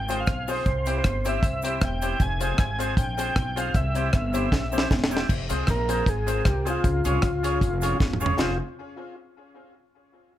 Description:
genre	ska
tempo	155 BPM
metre	4/4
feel	swing 54% on 8ths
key	F harmonic minor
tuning	A4 = 444 Hz
part	tonewheel organ	melody	0.0-8.6 s	F4 to Ab5	-30 LUFS	equal	chorus vibrato, tape echo
part	upright bass	bass	0.0-8.6 s	E1 to Db2	-28 LUFS	equal	none
part	clean electric guitar	accompaniment	0.1-8.5 s	E4 to Db5	-32 LUFS	right 2 dB	none
part	tack piano	stabs	0.1-8.5 s	C4 to Db5	-33 LUFS	left 5 dB	tape echo
part	deep reggae drum kit	drums	0.1-8.5 s	crash cymbal, hi-hat, kick drum, rim click, snare drum, toms	-25 LUFS	equal	none
part	cabasa	percussion	0.1-8.6 s	none	-44 LUFS	right 4 dB	none
room	light reverb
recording	none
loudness	-22 LUFS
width	side -12 dB against mid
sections	0.0-5.3 A section; 5.3-8.4 B section; 8.4-9.9 C section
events	drum fill 4.5-5.3, 8.0-8.4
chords	0.0 Fm; 0.7 C; 2.2 Fm; 3.7 C; 5.3 Fm; 6.8 Db; 8.4 Fm

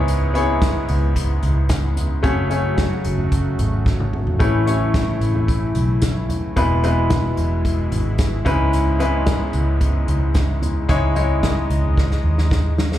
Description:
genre	piano-driven pop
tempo	111 BPM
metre	4/4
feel	straight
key	C# minor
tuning	A4 = 438 Hz
part	clear baby grand piano	accompaniment	0.0-13.0 s	G#2 to C#5	-22 LUFS	left 2 dB	slapback echo
part	warm analog pad	sustained chords	0.0-13.0 s	B2 to D#5	-29 LUFS	left 1 dB	chorus
part	vintage muted fingered electric bass	bass	0.0-13.0 s	E1 to D#2	-20 LUFS	equal	none
part	unplugged drum kit	drums	0.1-13.0 s	hi-hat, kick drum, snare drum, toms	-22 LUFS	equal	none
room	small room ambience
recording	live gig heard through the venue's PA, club reverb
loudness	-16 LUFS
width	side -12 dB against mid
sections	0.0-13.0 A section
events	drum fill 3.9-4.4, 12.0-13.0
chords	0.0 C#m7; 2.2 F#m; 4.4 A; 6.6 E; 8.5 C#m7; 10.9 C#madd9

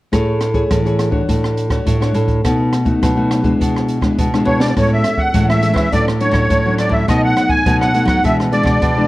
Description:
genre	samba and choro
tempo	104 BPM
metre	4/4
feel	straight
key	A major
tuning	A4 = 444 Hz
part	nylon-string guitar	accompaniment	0.1-9.1 s	F#2 to C#5	-19 LUFS	left 2 dB	none
part	nylon-string guitar	bass	0.1-9.1 s	A2 to F#3	-17 LUFS	right 1 dB	none
part	open jazz drum kit	drums	0.1-8.9 s	hi-hat, kick drum, rim click, snare drum	-20 LUFS	equal	none
part	musette accordion	melody	4.5-9.1 s	C#5 to G#5	-17 LUFS	right 1 dB	plate reverb
room	light reverb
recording	worn, warbling old tape, cassette tape, warbly pitch drift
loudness	-13 LUFS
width	side -18 dB against mid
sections	0.1-4.8 A section; 4.8-9.1 B section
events	drum fill 4.5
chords	0.1 Amaj7; 1.3 Dmaj7/A; 2.4 B7; 3.6 E7/B; 4.8 Amaj7; 5.9 Dmaj7/A; 7.1 B7; 8.2 E7/B

